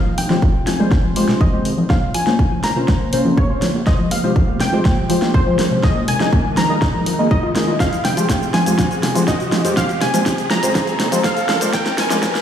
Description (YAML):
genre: progressive house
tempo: 122 BPM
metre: 4/4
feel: straight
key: F minor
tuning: A4 = 440 Hz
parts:
  - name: plucky unison lead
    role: melody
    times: 0.0-12.4 s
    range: C5 to Bb5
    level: -23 LUFS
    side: left 1 dB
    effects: digital delay
  - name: airy breathy pad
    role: sustained chords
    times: 0.0-12.4 s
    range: Db3 to Bb4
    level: -26 LUFS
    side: right 1 dB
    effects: chorus, sidechain pumping
  - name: tight sequenced synth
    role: arpeggios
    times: 0.0-12.4 s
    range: F2 to F4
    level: -22 LUFS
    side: equal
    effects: chorus, vintage 12-bit sampler grit, sidechain pumping, digital delay
  - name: riser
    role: sound effects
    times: 2.1-12.4 s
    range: none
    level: -28 LUFS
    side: right 2 dB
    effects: none
  - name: dark detuned saw bass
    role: bass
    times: 0.2-12.2 s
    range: Eb1 to F2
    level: -27 LUFS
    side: right 1 dB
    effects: none
  - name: deep house drum kit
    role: drums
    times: 0.2-12.4 s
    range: hi-hat, shaker, snare drum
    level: -22 LUFS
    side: equal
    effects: none
  - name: deep mellow chord stab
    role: stabs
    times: 0.3-12.3 s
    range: G3 to Eb5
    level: -22 LUFS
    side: left 1 dB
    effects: chorus, phaser, cassette tape, sidechain pumping, digital delay
  - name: electronic kick drum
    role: drums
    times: 0.4-12.3 s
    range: none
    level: -18 LUFS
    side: equal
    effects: none
room: moderate lush hall reverb, RT60 2.1 s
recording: played on a big sound system in a bare room, stone room reverb, high-pass filter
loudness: -14 LUFS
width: side -9 dB against mid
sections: 0.0-12.4 A section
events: build-up 0.0-12.4; drum fill 0.0-12.4; filter sweep on synth arpeggio sound 0.0-12.4; filter sweep on analog synth pad 0.0-12.4; filter sweep on digital synth lead 0.0-12.4; filter sweep 0.0-12.4; riser 2.1-12.4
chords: 0.0 Fmadd9; 1.9 Bbmadd9; 3.9 Fmadd9; 5.8 Ebsus4; 7.8 Fmadd9; 9.8 Bbmadd9; 11.7 Fmadd9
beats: 0.42 0.92 1.41 | 1.90 2.39 2.88 3.38 | 3.87 4.36 4.85 5.34 | 5.83 6.33 6.82 7.31 | 7.80 8.29 8.79 9.28 | 9.77 10.26 10.75 11.24 | 11.74 12.23